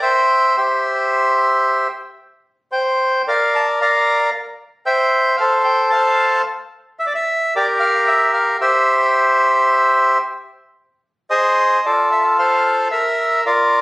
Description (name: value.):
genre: tango.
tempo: 112 BPM.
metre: 4/4.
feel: rubato.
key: unclear.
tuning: A4 = 439 Hz.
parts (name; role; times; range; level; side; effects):
bandoneon; solo; 0.0-13.8 s; F4 to Bb5; -14 LUFS; equal; none.
room: light reverb.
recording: recorded on a phone in the room, studio reverb, compression.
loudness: -14 LUFS.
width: side -21 dB against mid.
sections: 0.0-13.8 A section.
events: none.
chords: 0.0 C; 2.2 N.C.; 3.3 Bb; 4.3 C; 5.4 F; 6.5 N.C.; 7.5 Gm; 8.6 C; 10.8 Ab; 11.8 F; 12.9 Bb.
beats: | 0.02 0.55 1.09 1.63 | 2.17 2.71 3.25 3.79 | 4.33 4.86 5.39 5.93 | 6.46 6.99 7.52 8.05 | 8.58 9.12 9.66 10.21 | 10.75 11.29 11.84 12.37 | 12.91 13.45.